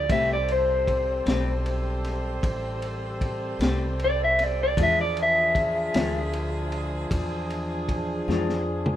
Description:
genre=slow blues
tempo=51 BPM (dotted quarters)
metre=12/8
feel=straight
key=A minor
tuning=A4 = 440 Hz
part: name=electric guitar through a small old amp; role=melody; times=0.0-7.5 s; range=C5 to E5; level=-24 LUFS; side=left 1 dB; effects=none
part: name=tonewheel organ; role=sustained chords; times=0.0-9.0 s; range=F3 to A4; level=-33 LUFS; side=equal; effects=slow rotary speaker
part: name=upright bass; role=bass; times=0.0-9.0 s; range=A1 to F2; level=-30 LUFS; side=equal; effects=none
part: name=semi-hollow electric guitar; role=accompaniment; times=0.1-8.5 s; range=E3 to B4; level=-29 LUFS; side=left 5 dB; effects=harmonic tremolo
part: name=warm saxophone section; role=sustained chords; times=0.1-9.0 s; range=C4 to C5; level=-36 LUFS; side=equal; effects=none
part: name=crunchy breakbeat drum kit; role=drums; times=0.1-9.0 s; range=kick drum, ride cymbal, snare drum, toms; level=-31 LUFS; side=equal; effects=none
room=small room ambience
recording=rough home demo mix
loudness=-23 LUFS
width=side -12 dB against mid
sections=0.0-9.0 A section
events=clean electric guitar solo 0.0-9.0; drum fill 8.3-9.0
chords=0.1 Am9; 4.8 E7b9

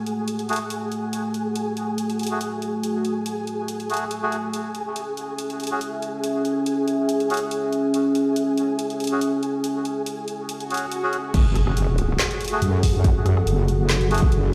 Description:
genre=deep dubstep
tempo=141 BPM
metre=4/4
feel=swing 54% on 16ths, half-time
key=F# minor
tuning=A4 = 440 Hz
part: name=dark analog pad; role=sustained chords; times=0.0-14.5 s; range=A3 to F#5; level=-28 LUFS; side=equal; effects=chorus
part: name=flickering grainy texture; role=texture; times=0.0-14.5 s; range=F#4 to G#5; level=-35 LUFS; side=equal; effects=built-in reverb
part: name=deep house drum kit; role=drums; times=0.1-14.4 s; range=crash cymbal, handclaps, hi-hat, rim click, snare drum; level=-32 LUFS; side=equal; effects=none
part: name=melodica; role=stabs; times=0.5-14.2 s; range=A3 to G#4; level=-33 LUFS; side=equal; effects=low-pass filter, dub echo
part: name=swell and impact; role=sound effects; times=10.7-13.0 s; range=none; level=-33 LUFS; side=equal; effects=none
part: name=wobble bass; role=bass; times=11.3-14.5 s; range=F#1 to F#2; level=-22 LUFS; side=equal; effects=chorus
part: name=electronic kick drum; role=drums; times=11.3-14.3 s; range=none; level=-22 LUFS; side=equal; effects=none
room=light reverb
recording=played on a big sound system in a bare room, stone room reverb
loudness=-24 LUFS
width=mono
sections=0.0-11.3 A section; 11.3-14.5 B section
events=swell 10.7-11.3; drop 11.3-14.5; impact 11.3-13.0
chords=0.0 F#madd9; 4.5 E6; 11.3 F#madd9

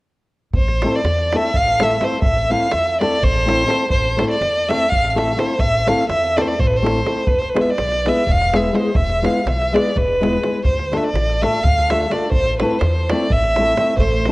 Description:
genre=balkan folk, Balkan wedding band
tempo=250 BPM (eighths)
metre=7/8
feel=straight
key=A harmonic minor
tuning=A4 = 444 Hz
part: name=upright bass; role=bass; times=0.5-14.3 s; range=E1 to E2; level=-22 LUFS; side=equal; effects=none
part: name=davul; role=percussion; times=0.5-14.3 s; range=none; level=-23 LUFS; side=right 1 dB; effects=none
part: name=rich violin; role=melody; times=0.6-14.3 s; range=B4 to F5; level=-18 LUFS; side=equal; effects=none
part: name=nylon-string guitar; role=accompaniment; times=0.8-14.3 s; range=G#3 to A4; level=-21 LUFS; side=left 2 dB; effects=none
part: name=oud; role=second line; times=14.0-14.3 s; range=A3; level=-21 LUFS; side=right 1 dB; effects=none
room=light reverb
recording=worn, warbling old tape, cassette tape, warbly pitch drift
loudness=-15 LUFS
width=side -20 dB against mid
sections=0.5-14.0 A section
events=none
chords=0.5 Am; 7.3 E; 10.6 Dm; 12.3 Am

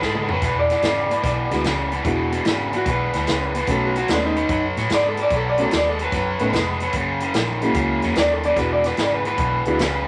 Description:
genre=electric blues shuffle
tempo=147 BPM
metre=4/4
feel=swing 68% on 8ths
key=unclear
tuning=A4 = 440 Hz
part: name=electric guitar through a small old amp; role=melody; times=0.0-10.1 s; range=D4 to D5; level=-25 LUFS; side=equal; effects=none
part: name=overdriven semi-hollow guitar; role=riff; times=0.0-10.1 s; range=E2 to G#3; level=-25 LUFS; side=equal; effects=none
part: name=vintage muted fingered electric bass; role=bass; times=0.0-10.1 s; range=E1 to A2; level=-30 LUFS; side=equal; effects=none
part: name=swinging big-band drum kit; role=drums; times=0.0-9.9 s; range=hi-hat, kick drum, snare drum, toms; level=-28 LUFS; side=equal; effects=none
part: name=dark upright piano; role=accompaniment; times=1.5-9.8 s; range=G#3 to A4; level=-27 LUFS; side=equal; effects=none
room=moderate studio reverb, RT60 0.6 s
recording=none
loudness=-21 LUFS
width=mono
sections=0.0-10.1 A section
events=clean electric guitar solo 0.0-10.1; drum fill 0.0-0.4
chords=0.4 E7; 3.7 B7; 6.9 F#7; 8.6 E7

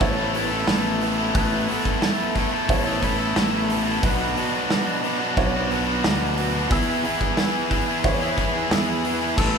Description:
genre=post-rock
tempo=90 BPM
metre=4/4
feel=straight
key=unclear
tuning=A4 = 439 Hz
part: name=pedal steel guitar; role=sustained chords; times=0.0-9.6 s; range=B4 to F#6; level=-36 LUFS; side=left 1 dB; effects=none
part: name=felt-muted upright piano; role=arpeggios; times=0.0-9.6 s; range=B4 to C#5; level=-31 LUFS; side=right 3 dB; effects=none
part: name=distorted electric guitar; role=riff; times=0.0-9.6 s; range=B2 to A4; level=-26 LUFS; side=right 8 dB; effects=overdrive
part: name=overdriven electric guitar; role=riff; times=0.0-9.6 s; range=B2 to A4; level=-25 LUFS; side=left 8 dB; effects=none
part: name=fuzz fingered electric bass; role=bass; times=0.0-9.6 s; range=A1 to E2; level=-28 LUFS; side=left 1 dB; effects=overdrive
part: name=loose indie drum kit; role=drums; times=0.0-9.5 s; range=crash cymbal, hi-hat, kick drum, snare drum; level=-25 LUFS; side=equal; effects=none
room=wet recital hall reverb, RT60 1.5 s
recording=recorded in a church or concert hall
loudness=-20 LUFS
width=side -6 dB against mid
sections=0.0-9.6 A section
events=none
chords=0.0 Asus2; 4.0 Bm; 6.7 E

